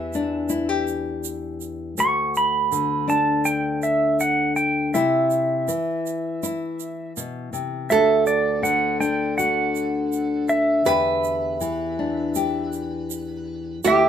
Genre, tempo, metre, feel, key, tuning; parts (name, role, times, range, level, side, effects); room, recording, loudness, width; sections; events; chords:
acoustic folk duo or small band; 81 BPM; 4/4; straight; A4 = 440 Hz
pedal steel guitar; melody; 0.0-14.1 s; D5 to C#6; -22 LUFS; right 2 dB
nylon-string guitar; accompaniment; 0.0-14.1 s; D2 to G4; -24 LUFS; left 4 dB
egg shaker; percussion; 0.1-14.0 s; -33 LUFS; right 10 dB
lap resonator guitar; second line; 7.9-14.1 s; G4 to B4; -21 LUFS; right 6 dB
moderate studio ambience, RT60 0.5 s; minimal, uncompressed stereo recording; -20 LUFS; side -9 dB against mid
0.0-14.1 A section
0.0 Em7; 2.0 D6; 4.9 C; 7.9 D; 10.9 Em7